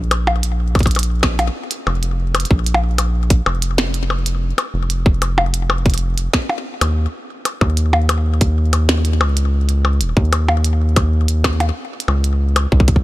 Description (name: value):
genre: IDM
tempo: 94 BPM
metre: 4/4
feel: straight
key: unclear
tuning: A4 = 440 Hz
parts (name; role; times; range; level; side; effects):
- rubbery square bass; bass; 0.0-13.0 s; Eb1 to Eb2; -16 LUFS; equal; tube saturation
- glitchy drum kit; drums; 0.1-13.0 s; hi-hat, percussion blips, snare drum; -20 LUFS; left 1 dB; ping-pong delay
- electronic kick drum; drums; 0.8-13.0 s; none; -14 LUFS; equal; none
room: digital ambience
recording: none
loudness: -15 LUFS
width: side -17 dB against mid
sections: 0.0-13.0 A section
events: none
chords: none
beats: 0.59 1.23 1.87 | 2.51 3.15 3.78 4.42 | 5.06 5.70 6.34 6.97 | 7.61 8.25 8.89 9.53 | 10.17 10.80 11.44 12.08 | 12.72